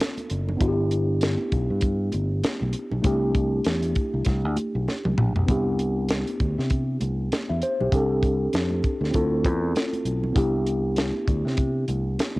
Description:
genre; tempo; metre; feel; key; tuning
lush 1970s-style soul; 98 BPM; 4/4; swing 58% on 16ths; C major; A4 = 445 Hz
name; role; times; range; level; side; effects
mellow tine electric piano; accompaniment; 0.0-12.4 s; A3 to E5; -26 LUFS; equal; medium stereo tremolo, cassette tape
tight funk drum kit; drums; 0.0-12.4 s; hi-hat, kick drum, snare drum, toms; -25 LUFS; equal; cassette tape
congas; percussion; 0.0-12.4 s; none; -37 LUFS; right 2 dB; none
fingered electric bass; bass; 0.3-12.4 s; F#1 to C3; -26 LUFS; equal; tube saturation
room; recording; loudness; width
light reverb, small room ambience; home recording on cassette; -22 LUFS; side -21 dB against mid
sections
0.0-5.5 A section; 5.5-12.4 B section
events
drum fill 4.9-5.5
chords
0.0 G9 (rootless); 0.6 G6; 3.0 C69; 5.5 Cmaj9; 7.9 F69/C; 9.1 Dm9; 10.4 Cmaj9

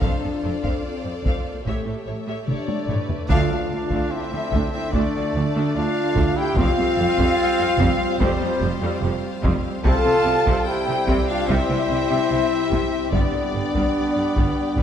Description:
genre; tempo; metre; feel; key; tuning
cinematic, epic orchestral film score; 73 BPM; 4/4; straight; D dorian from 3.3 s; A4 = 440 Hz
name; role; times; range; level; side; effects
warm symphonic violin section; melody; 0.0-14.8 s; A4 to A5; -32 LUFS; left 5 dB; none
rich studio violin section; second line; 0.0-14.8 s; A4 to A5; -31 LUFS; left 4 dB; none
warm symphonic viola section; accompaniment; 0.0-14.8 s; C3 to C#5; -32 LUFS; equal; none
mellow French horn section; sustained chords; 0.0-14.8 s; A3 to A4; -25 LUFS; left 2 dB; none
rich symphonic string section; sustained chords; 0.0-14.8 s; B3 to A5; -32 LUFS; left 1 dB; none
clear symphonic double bass section; bass; 0.0-14.8 s; F1 to D2; -28 LUFS; right 3 dB; none
rich symphonic cello section; bass; 0.0-14.8 s; D2 to C3; -28 LUFS; right 3 dB; none
taiko ensemble; drums; 0.0-14.8 s; none; -25 LUFS; equal; none
hollow small flute group; second line; 2.5-14.7 s; C5 to A5; -31 LUFS; left 1 dB; none
warm trumpet; stabs; 2.5-14.8 s; G3 to F4; -28 LUFS; right 2 dB; none
mellow trombone section; sustained chords; 3.3-14.8 s; C3 to C4; -32 LUFS; right 3 dB; none
timpani; percussion; 3.3-4.5 s; D3; -32 LUFS; equal; none
room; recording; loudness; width
moderate scoring stage reverb, RT60 2.0 s; dark, warm production; -19 LUFS; side -9 dB against mid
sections
0.0-3.3 A section; 3.3-14.8 A section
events
drum fill 2.5-3.3; band accent 3.3-4.1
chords
0.0 F; 1.7 A7; 3.3 Dm; 6.6 Fsus2; 9.9 C; 13.1 G

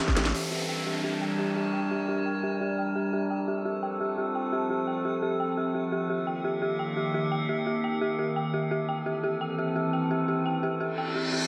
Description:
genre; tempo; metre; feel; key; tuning
drum and bass; 172 BPM; 4/4; straight; G minor; A4 = 440 Hz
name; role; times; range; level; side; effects
metallic inharmonic drone; sustained chords; 0.0-11.5 s; Eb3 to Bb4; -32 LUFS; equal; chorus, built-in reverb, phaser, sidechain pumping
dark detuned synth bell; arpeggios; 0.0-11.4 s; G4 to G5; -33 LUFS; equal; chorus, sidechain pumping, low-pass filter, tape echo
downlifter and reverse cymbal; sound effects; 0.3-3.1, 10.9-11.5 s; none; -36 LUFS; equal; none
room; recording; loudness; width
wet plate reverb, RT60 1.2 s; dense, heavily limited modern master; -29 LUFS; mono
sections
0.3-11.5 A section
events
filter sweep on synth bell 0.3-11.5; reverse cymbal 10.9-11.5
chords
0.3 Gm; 3.1 F; 5.9 Eb; 8.7 Am

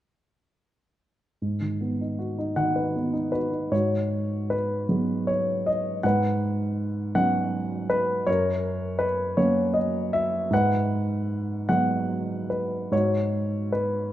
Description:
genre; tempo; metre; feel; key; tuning
classical, lyrical solo piano; 48-55 BPM (dotted quarters); 6/8; rubato; G# minor; A4 = 441 Hz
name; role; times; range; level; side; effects
dark grand piano; solo; 1.4-14.1 s; F#2 to F#5; -23 LUFS; equal; none
room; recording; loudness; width
moderate scoring stage reverb, RT60 1.9 s; dark, warm production; -23 LUFS; side -13 dB against mid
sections
1.4-3.7 A section; 3.7-14.1 B section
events
none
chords
1.4 G#m7; 6.0 C#7sus4/G#; 8.3 F#; 10.5 G#m7

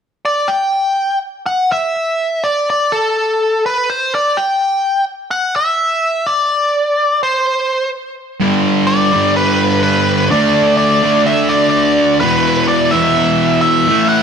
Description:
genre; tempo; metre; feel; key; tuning
rock; 126 BPM; 4/4; straight; G major; A4 = 440 Hz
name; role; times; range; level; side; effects
nasal lead guitar with a parked wah; melody; 0.3-14.2 s; A4 to G5; -14 LUFS; equal; overdrive, tape echo
thick fuzz guitar; riff; 8.4-14.2 s; E2 to D4; -13 LUFS; equal; distortion
room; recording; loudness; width
wet studio reverb, RT60 0.6 s; none; -12 LUFS; side -7 dB against mid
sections
0.8-8.4 A section; 8.4-14.2 B section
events
none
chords
0.0 N.C.; 8.4 G; 10.3 D5; 12.2 E5

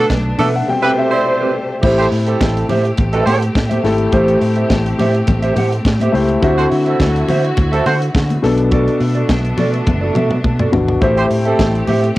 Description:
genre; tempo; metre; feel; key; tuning
disco; 104 BPM; 4/4; straight; A dorian; A4 = 440 Hz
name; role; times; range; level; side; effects
dark concert grand piano; accompaniment; 0.0-12.2 s; B2 to G5; -18 LUFS; left 3 dB; cassette tape
mellow electric guitar; accompaniment; 0.0-12.2 s; C4 to F#5; -20 LUFS; right 3 dB; cassette tape
clear studio string section; sustained chords; 0.0-12.2 s; D3 to C5; -24 LUFS; equal; cassette tape
warm horn section; stabs; 0.0-11.9 s; C4 to C5; -18 LUFS; right 3 dB; cassette tape
fingered electric bass; bass; 0.0-12.1 s; F#1 to D3; -18 LUFS; equal; none
tight funk drum kit; drums; 0.1-12.2 s; crash cymbal, hi-hat, kick drum, snare drum, toms; -20 LUFS; equal; cassette tape
congas; percussion; 0.1-12.2 s; none; -22 LUFS; left 3 dB; none
room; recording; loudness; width
light reverb; home recording on cassette; -12 LUFS; side -17 dB against mid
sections
0.0-1.8 A section; 1.8-12.2 B section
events
band accent 0.0-1.8; grand piano solo 0.0-1.8; drum fill 9.9-11.0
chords
0.0 Bm7; 0.7 Am9; 1.8 Am7; 6.4 D9; 8.4 Bm7; 11.0 Am7

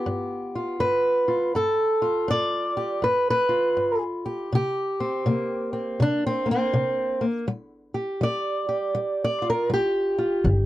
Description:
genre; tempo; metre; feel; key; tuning
acoustic country blues, solo or duo; 81 BPM; 4/4; swing 63% on 8ths; G mixolydian; A4 = 440 Hz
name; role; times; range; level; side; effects
fingerpicked old ladder-braced acoustic guitar; melody; 0.0-10.7 s; G2 to D5; -22 LUFS; equal; none
upright bass; bass; 10.4-10.7 s; G1; -18 LUFS; equal; none
room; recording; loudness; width
light reverb; dry, close 1970s-style studio recording, faint mains hum; -22 LUFS; side -15 dB against mid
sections
0.0-10.7 A section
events
steel-string acoustic guitar solo 0.0-10.7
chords
0.0 G7; 4.5 C5; 7.5 G7(no3)

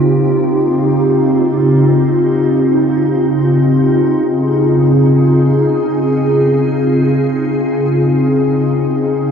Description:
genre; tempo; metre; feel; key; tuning
ambient; free time; none; none; Db lydian; A4 = 442 Hz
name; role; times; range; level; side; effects
soft additive organ-like pad; solo; 0.0-9.3 s; Db3 to Ab4; -11 LUFS; equal; ensemble chorus, built-in reverb, ping-pong delay
room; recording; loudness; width
wet huge ambient reverb, RT60 7.3 s; worn, warbling old tape, cassette tape, warbly pitch drift; -11 LUFS; side -7 dB against mid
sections
0.0-9.3 A section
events
none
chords
0.0 Dbmaj9#11

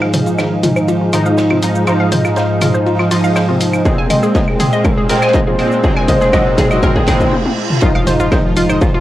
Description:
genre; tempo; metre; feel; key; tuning
melodic techno; 121 BPM; 4/4; straight; F minor; A4 = 440 Hz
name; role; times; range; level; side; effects
soft supersaw; melody; 0.0-9.0 s; C3 to Ab4; -20 LUFS; equal; low-pass filter, cassette tape, analog delay
warm analog pad; sustained chords; 0.0-9.0 s; F3 to F5; -25 LUFS; equal; chorus, sidechain pumping, cassette tape
analog pluck; arpeggios; 0.0-9.0 s; F4 to F6; -20 LUFS; left 1 dB; chorus, sidechain pumping, cassette tape, analog delay
sync-sweep polysynth; stabs; 0.0-9.0 s; Ab2 to Eb4; -16 LUFS; equal; ensemble chorus, sidechain pumping, cassette tape, analog delay
punchy analog drum machine; drums; 0.0-8.9 s; claves, hi-hat, shaker, toms; -20 LUFS; equal; none
riser, reverse cymbal and impact; sound effects; 0.0-9.0 s; none; -28 LUFS; equal; none
open jazz drum kit; drums; 0.1-8.9 s; hi-hat, ride cymbal, snare drum; -31 LUFS; right 1 dB; high-pass filter on cymbals, high-pass filter on hats, high-pass filter on snare, high-pass filter on room
electronic kick drum; drums; 3.9-8.9 s; none; -14 LUFS; equal; distortion
soft supersaw; second line; 7.8-9.0 s; F4 to Eb5; -24 LUFS; equal; sidechain pumping, cassette tape
round analog bass; bass; 8.0-9.0 s; Eb1 to F1; -22 LUFS; equal; sidechain pumping
room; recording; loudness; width
wet studio reverb, RT60 0.6 s; home recording on cassette; -11 LUFS; side -14 dB against mid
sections
0.0-7.8 A section; 7.8-9.0 B section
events
build-up 0.0-7.8; filter sweep on synth arpeggio sound 0.0-7.8; filter sweep on supersaw synth 0.0-7.8; drum fill 3.9-7.3, 7.3-7.8; reverse cymbal 7.0-7.8; stop 7.3-7.8; drop 7.8-9.0; impact 7.8-9.0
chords
0.0 Fm7; 3.9 Abadd9; 7.8 Fm7

